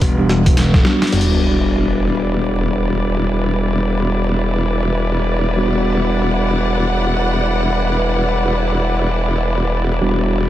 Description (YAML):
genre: glitch hop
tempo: free time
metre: none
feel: none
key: E minor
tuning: A4 = 440 Hz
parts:
  - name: dark chamber string section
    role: sustained chords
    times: 0.0-10.5 s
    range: E3 to F#5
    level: -21 LUFS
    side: equal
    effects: sidechain pumping
  - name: mellow tine electric piano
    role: stabs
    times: 0.0-10.5 s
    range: G3 to A4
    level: -20 LUFS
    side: equal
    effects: medium stereo tremolo, vintage 12-bit sampler grit, sidechain pumping, ping-pong delay
  - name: glassy slap bass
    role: bass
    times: 0.0-0.8 s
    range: E1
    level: -17 LUFS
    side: equal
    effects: none
  - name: boom bap sampler-style drum kit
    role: drums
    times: 0.0-1.3 s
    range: crash cymbal, hi-hat, snare drum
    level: -22 LUFS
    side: equal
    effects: none
  - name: electronic kick drum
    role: drums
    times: 0.0-0.8 s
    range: none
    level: -14 LUFS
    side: equal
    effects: none
  - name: formant-sweep wobble bass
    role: bass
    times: 1.1-10.5 s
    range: E1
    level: -19 LUFS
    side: equal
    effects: chorus, overdrive
  - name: sub drop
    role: sound effects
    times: 1.1-3.3 s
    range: none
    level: -22 LUFS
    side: equal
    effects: none
room: moderate lush hall reverb, RT60 2.1 s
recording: dense, heavily limited modern master, vinyl crackle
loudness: -14 LUFS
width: side -13 dB against mid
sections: 0.0-1.1 A section; 1.1-10.5 B section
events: drum fill 0.3-1.1; impact 1.1-3.3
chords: 0.0 Em7